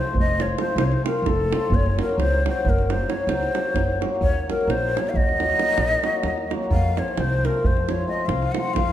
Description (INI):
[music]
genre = balkan folk, Balkan wedding band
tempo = 264 BPM (eighths)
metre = 11/8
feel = straight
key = F phrygian dominant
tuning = A4 = 440 Hz
[part]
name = breathy bright ney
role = melody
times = 0.0-8.9 s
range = A4 to Gb5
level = -24 LUFS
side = left 2 dB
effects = none
[part]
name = cimbalom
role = accompaniment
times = 0.0-8.9 s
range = F3 to Gb4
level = -27 LUFS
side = left 3 dB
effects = none
[part]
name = upright bass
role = bass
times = 0.1-8.9 s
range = F1 to F2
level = -25 LUFS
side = equal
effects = none
[part]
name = davul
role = percussion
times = 0.2-8.9 s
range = none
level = -25 LUFS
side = right 2 dB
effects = none
[sound]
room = moderate recital hall reverb, RT60 1.4 s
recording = dark, warm production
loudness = -19 LUFS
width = side -11 dB against mid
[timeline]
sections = 0.0-8.9 A section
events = none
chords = 0.0 F; 1.7 Gb; 4.2 Ebm; 6.7 F